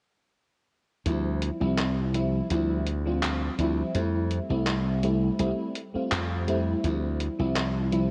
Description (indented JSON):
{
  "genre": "vaporwave",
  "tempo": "83 BPM",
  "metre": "4/4",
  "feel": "swing 53% on 16ths",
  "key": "unclear",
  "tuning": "A4 = 441 Hz",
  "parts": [
    { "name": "FM electric piano with soft pad layer", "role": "accompaniment", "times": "1.1-8.1 s", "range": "F3 to F4", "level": "-30 LUFS", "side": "equal", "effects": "ensemble chorus, tape echo" },
    { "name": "glassy slap bass", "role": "bass", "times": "1.1-8.1 s", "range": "C2 to F2", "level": "-30 LUFS", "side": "equal", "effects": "none" },
    { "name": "detuned 8-bit digital drum machine", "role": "drums", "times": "1.1-8.1 s", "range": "handclaps, hi-hat", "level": "-35 LUFS", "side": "equal", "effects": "gated reverb" }
  ],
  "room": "light reverb",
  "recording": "cassette tape",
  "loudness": "-27 LUFS",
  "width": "mono",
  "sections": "1.1-8.1 A section",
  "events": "none",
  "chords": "1.1 Dm11; 4.0 Fmaj7; 6.8 Dm11"
}